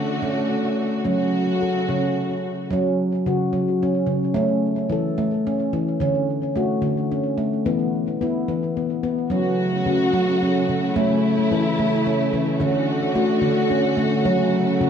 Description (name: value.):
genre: world meditative, meditative tuned percussion.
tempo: 73 BPM (dotted quarters).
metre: 6/8.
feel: straight.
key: F# minor.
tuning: A4 = 438 Hz.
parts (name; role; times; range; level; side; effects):
warm chamber string section; sustained chords; 0.0-2.7, 9.3-14.9 s; C#3 to F#4; -23 LUFS; right 1 dB; none.
handpan; arpeggios; 0.0-14.9 s; C#3 to A4; -20 LUFS; left 1 dB; ping-pong delay.
room: wet recital hall reverb, RT60 1.4 s, small room reverb.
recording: dark, warm production.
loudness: -19 LUFS.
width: side -8 dB against mid.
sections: 0.0-2.7 A section; 2.7-14.9 B section.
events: none.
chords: 0.0 D; 1.0 F#m; 2.7 F#5; 4.4 A; 6.0 D; 7.7 E5; 9.3 F#m; 11.0 A; 12.6 D; 14.3 F#m.